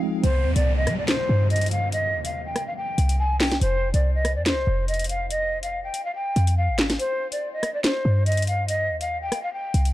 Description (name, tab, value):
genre	hip hop, drill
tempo	142 BPM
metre	4/4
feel	half-time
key	C minor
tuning	A4 = 442 Hz
part	breathy jazz flute	melody	0.2-9.9 s	C5 to Ab5	-26 LUFS	left 1 dB	low-pass filter, ping-pong delay
part	short 808-style bass	bass	0.2-9.9 s	F1 to G3	-22 LUFS	equal	none
part	drill drum kit	drums	0.2-9.9 s	handclaps, hi-hat, rim click, snare drum	-26 LUFS	equal	none
part	downlifter	sound effects	0.2-3.6 s	none	-33 LUFS	right 1 dB	none
room	little or no reverb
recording	dark, warm production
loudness	-21 LUFS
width	side -15 dB against mid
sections	0.2-9.9 A section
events	break 0.0, 7.0-7.8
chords	0.2 Cm; 3.6 F5; 7.0 Cm